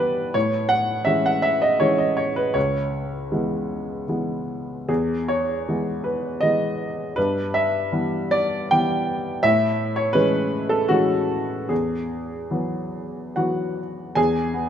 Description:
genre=neoclassical minimalist piano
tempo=68-84 BPM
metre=3/4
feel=rubato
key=E major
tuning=A4 = 440 Hz
part: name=clear baby grand piano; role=solo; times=0.0-14.7 s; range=C#2 to G#5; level=-20 LUFS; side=equal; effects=none
room=moderate concert hall reverb, RT60 2.4 s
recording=minimal, uncompressed stereo recording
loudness=-20 LUFS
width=side -9 dB against mid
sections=0.0-14.2 A section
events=none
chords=0.4 Amaj7; 2.6 C#m7; 4.9 Emaj7; 7.2 G6; 9.4 Amaj7; 11.7 Eadd9; 14.2 E

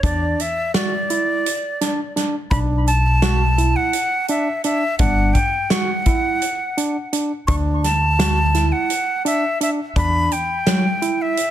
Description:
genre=progressive instrumental, band music in an uneven meter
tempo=169 BPM (eighths)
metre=7/8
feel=straight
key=unclear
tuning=A4 = 442 Hz
part: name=breathy bright concert flute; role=melody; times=0.0-11.5 s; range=D5 to C#6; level=-21 LUFS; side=equal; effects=digital delay
part: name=overdriven tine electric piano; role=arpeggios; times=0.0-11.4 s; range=F#3 to F#4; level=-23 LUFS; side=right 2 dB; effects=none
part: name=upright bass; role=bass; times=0.0-10.3 s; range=G1 to E2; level=-19 LUFS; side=equal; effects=none
part: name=loose indie drum kit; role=drums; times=0.0-11.5 s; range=hi-hat, kick drum, snare drum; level=-22 LUFS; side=equal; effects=none
room=light reverb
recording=dense, heavily limited modern master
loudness=-17 LUFS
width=side -11 dB against mid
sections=0.0-11.5 A section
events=none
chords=0.0 Dsus2/E; 2.5 Bm7; 5.0 G5; 7.5 D; 10.0 Em7

